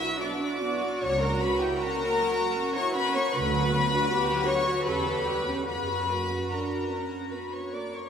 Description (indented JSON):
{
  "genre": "classical, slow romantic movement for string orchestra",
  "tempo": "71-80 BPM",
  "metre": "3/4",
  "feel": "rubato",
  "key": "unclear",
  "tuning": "A4 = 435 Hz",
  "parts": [
    { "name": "warm symphonic violin section", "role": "melody", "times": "0.0-8.1 s", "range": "G5 to E6", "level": "-31 LUFS", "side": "left 4 dB", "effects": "none" },
    { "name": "warm studio violin section", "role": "second line", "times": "0.0-8.1 s", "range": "G4 to E5", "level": "-30 LUFS", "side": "left 2 dB", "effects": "none" },
    { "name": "dark symphonic viola section", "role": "accompaniment", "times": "0.0-8.1 s", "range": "C#3 to G4", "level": "-33 LUFS", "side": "right 2 dB", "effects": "none" },
    { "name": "rich symphonic cello section", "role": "bass", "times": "0.0-7.7 s", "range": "D4 to A4", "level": "-32 LUFS", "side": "right 2 dB", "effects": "none" },
    { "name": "dark symphonic double bass section", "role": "bass", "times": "1.0-6.4 s", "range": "C#2 to F#2", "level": "-34 LUFS", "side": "right 2 dB", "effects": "none" }
  ],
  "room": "wet church reverb, RT60 3.8 s",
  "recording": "recorded in a church or concert hall",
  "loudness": "-25 LUFS",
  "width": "side -7 dB against mid",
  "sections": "0.0-8.1 A section",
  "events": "none",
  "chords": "0.0 Bm; 1.0 F#7/C#; 3.3 Bm/D; 4.9 C#dim/E; 5.7 F#"
}